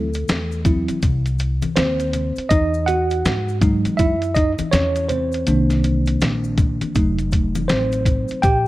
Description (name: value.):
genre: hip hop, jazz-hop.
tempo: 81 BPM.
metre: 4/4.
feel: swing 63% on 16ths.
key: unclear.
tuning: A4 = 439 Hz.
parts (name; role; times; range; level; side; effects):
tine electric piano; accompaniment; 0.0-8.7 s; Eb3 to G5; -20 LUFS; right 1 dB; medium stereo tremolo.
upright bass; bass; 0.0-8.7 s; F1 to G#2; -22 LUFS; left 1 dB; none.
lo-fi sampler-style drum kit; drums; 0.1-8.7 s; hi-hat, kick drum, snare drum; -20 LUFS; equal; none.
maracas and congas; percussion; 0.1-8.7 s; none; -31 LUFS; left 6 dB; none.
room: light reverb, studio ambience.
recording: none.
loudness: -17 LUFS.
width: side -17 dB against mid.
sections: 0.0-8.7 A section.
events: tine electric piano solo 0.0-8.7.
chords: 0.0 D9 (rootless); 2.5 Emaj9; 5.5 Cm7; 7.0 F7b9.